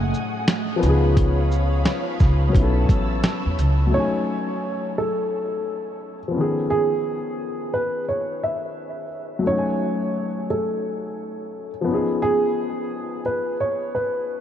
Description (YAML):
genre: lo-fi hip hop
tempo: 87 BPM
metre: 4/4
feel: swing 62% on 16ths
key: F# dorian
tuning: A4 = 439 Hz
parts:
  - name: dark upright piano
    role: accompaniment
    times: 0.0-14.4 s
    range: D#3 to G#5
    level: -25 LUFS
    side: left 3 dB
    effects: cassette tape
  - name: string machine, cellos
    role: sustained chords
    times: 0.0-3.9 s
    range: A3 to E6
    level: -30 LUFS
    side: right 1 dB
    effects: phaser, ensemble chorus
  - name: upright bass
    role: bass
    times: 0.0-3.9 s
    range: F#1 to E2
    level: -20 LUFS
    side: equal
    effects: none
  - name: dusty soul sampler-style drum kit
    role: drums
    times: 0.1-3.8 s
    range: hi-hat, kick drum, shaker, snare drum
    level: -21 LUFS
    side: equal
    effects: none
  - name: dark upright piano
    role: melody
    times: 3.9-14.4 s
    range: G#4 to E5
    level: -25 LUFS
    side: right 2 dB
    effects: tape echo
room: moderate huge ambient reverb, RT60 8.3 s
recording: dreamy mix soaked in reverb, cassette tape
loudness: -20 LUFS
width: side -10 dB against mid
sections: 0.0-3.9 A section; 3.9-14.4 B section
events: break 0.0-3.9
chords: 0.0 F#m69; 0.8 C#9; 2.6 B9sus4; 3.9 F#m69; 6.3 C#9; 9.4 F#m69; 11.9 C#9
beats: 0.48 | 1.17 1.86 2.55 3.24 | 3.93 4.62 5.31 6.00 | 6.69 7.38 8.07 8.76 | 9.45 10.14 10.83 11.52 | 12.21 12.90 13.59 14.28